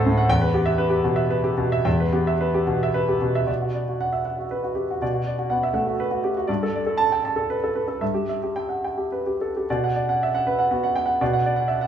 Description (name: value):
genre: neoclassical minimalist piano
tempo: 106-125 BPM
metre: 3/4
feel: rubato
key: unclear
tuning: A4 = 440 Hz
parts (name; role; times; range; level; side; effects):
- clear concert grand piano; solo; 0.0-11.9 s; D2 to A5; -20 LUFS; right 1 dB; none
room: wet large studio reverb, RT60 1.5 s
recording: band playing live in one room, small room ambience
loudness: -20 LUFS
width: side -9 dB against mid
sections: 0.0-3.5 A section; 3.5-9.7 B section; 9.7-11.9 C section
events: none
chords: 0.3 Em; 3.5 Bm; 6.5 Gadd9; 8.0 Em/G; 9.7 Bm